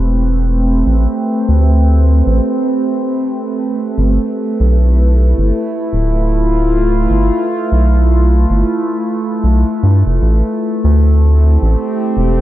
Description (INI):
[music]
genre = ambient dub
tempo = 77 BPM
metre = 4/4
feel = swing 60% on 16ths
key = A minor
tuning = A4 = 439 Hz
[part]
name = warbly tape-like pad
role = sustained chords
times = 0.0-12.4 s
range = A3 to B4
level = -16 LUFS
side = right 1 dB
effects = chorus, built-in reverb, phaser
[part]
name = round analog bass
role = bass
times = 0.0-12.4 s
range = D1 to G2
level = -11 LUFS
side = equal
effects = none
[sound]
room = moderate lush hall reverb, RT60 2.6 s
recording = dreamy mix soaked in reverb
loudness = -11 LUFS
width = side -14 dB against mid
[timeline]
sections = 0.0-12.4 A section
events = none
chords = 0.0 Am9; 4.0 G13; 10.2 Am7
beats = 0.09 | 0.86 1.65 2.42 3.20 | 3.98 4.76 5.54 6.32 | 7.10 7.88 8.66 9.44 | 10.22 10.99 11.77